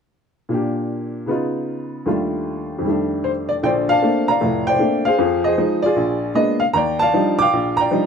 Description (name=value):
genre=solo jazz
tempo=154 BPM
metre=4/4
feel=swing 66% on 8ths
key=Bb major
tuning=A4 = 440 Hz
part: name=warm upright piano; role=solo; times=0.5-8.1 s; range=F1 to D6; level=-17 LUFS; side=equal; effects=none
room=light reverb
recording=none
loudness=-17 LUFS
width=side -6 dB against mid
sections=0.5-3.6 A section; 3.6-8.1 B section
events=none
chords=0.5 Bb6; 1.3 Db9; 2.1 Ebmaj9#11; 2.8 F13; 3.6 Bbmaj9; 5.2 Fm7; 6.0 Bb7b9; 6.7 Ebmaj9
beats=| 0.50 0.89 1.28 1.67 | 2.06 2.46 2.85 3.24 | 3.63 4.02 4.41 4.80 | 5.19 5.58 5.97 6.36 | 6.75 7.13 7.52 7.91